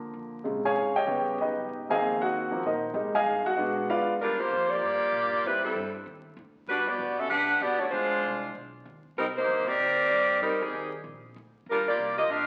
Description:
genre	jazz, big band swing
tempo	193 BPM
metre	4/4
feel	swing 62% on 8ths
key	Eb major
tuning	A4 = 441 Hz
part	warm baby grand piano	accompaniment	0.0-4.2 s	C3 to Ab5	-28 LUFS	equal	none
part	upright bass	bass	0.0-12.5 s	G1 to Bb2	-51 LUFS	equal	none
part	warm saxophone section	melody	4.2-12.5 s	Eb3 to F#5	-28 LUFS	equal	none
room	wet large studio reverb, RT60 1.4 s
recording	very old 78 rpm record, vinyl crackle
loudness	-28 LUFS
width	mono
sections	0.0-4.2 A section; 4.2-12.5 B section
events	grand piano solo 0.0-4.2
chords	0.4 Bbm7; 1.1 Eb7alt; 1.7 Ab69; 2.9 Fm9; 3.6 Bb7b9; 4.2 Ebmaj9; 5.4 Am7; 6.1 N.C.; 6.7 Gmaj7; 7.9 Dm7b5; 8.6 B; 9.2 Cm7; 10.4 Fm9; 11.0 Bb; 11.7 Ebmaj9

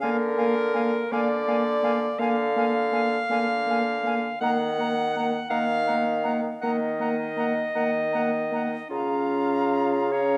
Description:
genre	classical, slow romantic movement for wind quintet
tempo	54 BPM (dotted quarters)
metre	12/8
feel	rubato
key	Eb minor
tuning	A4 = 441 Hz
part	silver concert flute	melody	0.0-10.4 s	Ab5 to Bb5	-37 LUFS	equal	none
part	clear oboe	second line	0.0-10.4 s	F5 to Gb5	-36 LUFS	equal	none
part	bright clarinet	accompaniment	0.0-10.4 s	F4 to Gb5	-30 LUFS	equal	none
part	mellow French horn	accompaniment	0.0-10.4 s	Bb3 to Db4	-32 LUFS	equal	none
part	warm bassoon	bass	0.0-10.4 s	Db3 to Eb3	-30 LUFS	equal	none
room	wet recital hall reverb, RT60 1.7 s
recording	none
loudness	-25 LUFS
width	mono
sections	0.0-10.4 A section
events	none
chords	0.0 Bb7/D; 4.4 Ebm; 8.9 Bbm/Db

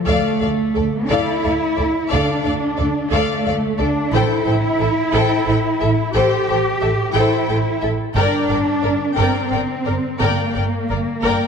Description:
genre	cinematic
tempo	59 BPM (dotted quarters)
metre	6/8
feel	straight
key	D minor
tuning	A4 = 437 Hz
part	warm symphonic cello section	bass	0.0-11.5 s	A3 to G4	-20 LUFS	right 1 dB	none
part	warm symphonic violin section	melody	0.1-11.5 s	D5 to G5	-26 LUFS	left 6 dB	none
part	warm symphonic violin section	second line	0.1-11.5 s	A4 to D5	-25 LUFS	left 5 dB	none
part	rich symphonic viola section	accompaniment	0.1-11.5 s	A4 to Bb4	-24 LUFS	equal	none
part	dark studio double bass section	bass	0.1-11.3 s	G1 to D2	-22 LUFS	right 2 dB	none
room	wet concert hall reverb, RT60 2.2 s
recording	dark, warm production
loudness	-16 LUFS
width	side -6 dB against mid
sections	0.0-11.5 A section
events	none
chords	0.0 Dm; 4.1 Am7; 8.2 Gm

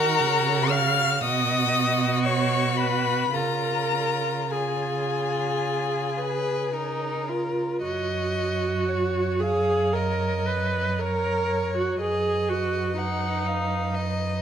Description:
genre	classical, slow romantic movement for string quartet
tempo	52-63 BPM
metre	4/4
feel	rubato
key	F# major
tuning	A4 = 441 Hz
part	rich violin	melody	0.0-14.4 s	B4 to E#6	-30 LUFS	left 10 dB	none
part	warm violin	second line	0.0-14.4 s	E#4 to F#5	-30 LUFS	left 4 dB	none
part	rich viola	accompaniment	0.0-14.4 s	D#4 to E#5	-26 LUFS	right 2 dB	none
part	warm cello	bass	0.0-14.4 s	F#2 to D#3	-28 LUFS	right 4 dB	none
room	moderate recital hall reverb, RT60 1.7 s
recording	close, detailed microphones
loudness	-22 LUFS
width	side -8 dB against mid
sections	0.0-7.8 A section; 7.8-14.4 B section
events	none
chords	0.0 D#m; 1.2 Badd9; 3.4 C#; 7.8 F#5; 12.0 B6/F#

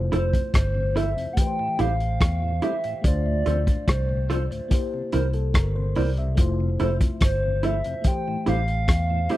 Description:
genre	lovers rock reggae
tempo	72 BPM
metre	4/4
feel	straight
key	unclear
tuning	A4 = 440 Hz
part	mellow FM electric piano	accompaniment	0.0-9.4 s	E3 to E5	-33 LUFS	left 3 dB	chorus, slapback echo
part	mellow tonewheel organ	accompaniment	0.0-9.4 s	D2 to E4	-34 LUFS	left 4 dB	slow rotary speaker, slapback echo
part	vintage muted fingered electric bass	bass	0.0-9.3 s	F1 to E2	-24 LUFS	equal	none
part	hollow clarinet-like synth lead	melody	0.1-9.4 s	C5 to G5	-29 LUFS	equal	chorus, tape echo
part	mellow electric guitar	stabs	0.1-9.4 s	E4 to C5	-27 LUFS	right 5 dB	none
part	crunchy breakbeat drum kit	drums	0.1-9.4 s	hi-hat, kick drum, rim click	-22 LUFS	equal	none
room	small room ambience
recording	dry, close 1970s-style studio recording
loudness	-21 LUFS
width	side -15 dB against mid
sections	0.0-9.4 A section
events	none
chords	0.0 Fmaj7; 1.4 Am7; 3.0 Dm7; 4.7 C7; 6.4 Fmaj7; 8.0 Am7

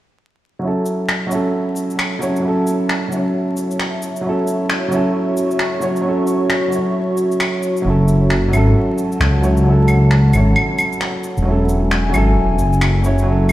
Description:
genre	future garage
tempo	133 BPM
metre	4/4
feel	swing 62% on 16ths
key	F# minor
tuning	A4 = 439 Hz
part	warm upright piano	accompaniment	0.6-13.5 s	F#3 to C#5	-19 LUFS	right 1 dB	low-pass filter, ping-pong delay
part	dark analog pad	sustained chords	1.7-13.5 s	F#4 to C#6	-23 LUFS	equal	chorus
part	electronic shaker, finger snaps and claves	drums	0.9-13.5 s	none	-22 LUFS	equal	overdrive
part	dark detuned saw bass	bass	7.8-13.5 s	E1 to C#2	-14 LUFS	equal	none
room	light reverb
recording	played on a big sound system in a bare room, stone room reverb, vinyl crackle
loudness	-14 LUFS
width	side -15 dB against mid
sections	0.6-13.5 A section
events	filter sweep on analog synth pad 0.6-13.5; filter sweep on upright piano 0.6-13.5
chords	0.6 F#m7

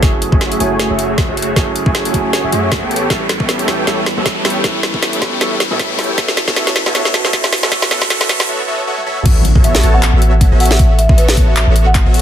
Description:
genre	future bass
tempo	156 BPM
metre	4/4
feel	swing 55% on 16ths, half-time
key	A major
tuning	A4 = 440 Hz
part	felt-muted upright piano	accompaniment	0.0-9.3 s	F#3 to A4	-22 LUFS	right 2 dB	sidechain pumping, tape echo
part	supersaw chords	riff	0.0-12.2 s	A3 to A5	-19 LUFS	equal	cassette tape, sidechain pumping, low-pass filter, tape echo
part	warm 808-style bass	bass	0.0-12.2 s	F#1 to A2	-16 LUFS	equal	sidechain pumping
part	electronic kick drum	drums	0.0-12.0 s	none	-13 LUFS	equal	none
part	trap drum kit	drums	0.0-12.2 s	crash cymbal, handclaps, hi-hat, snare drum, toms	-17 LUFS	equal	none
part	riser and impact	sound effects	0.2-10.8 s	none	-22 LUFS	equal	none
part	marimba with medium mallets	melody	9.6-12.1 s	B4 to F#5	-19 LUFS	equal	sidechain pumping, tape echo
room	light reverb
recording	dense, heavily limited modern master, high-pass filter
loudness	-11 LUFS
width	side -10 dB against mid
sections	0.0-9.3 A section; 9.3-12.2 B section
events	build-up 0.0-9.3; drum fill 0.0-8.5, 9.0; filter sweep on supersaw synth 0.0-9.3; filter sweep 0.0-9.3; riser 0.2-8.5; break 8.5-9.3; drop 9.3-12.2; impact 9.3-10.8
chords	0.0 F#m9; 2.9 A9; 6.2 Dmaj9; 9.3 A69

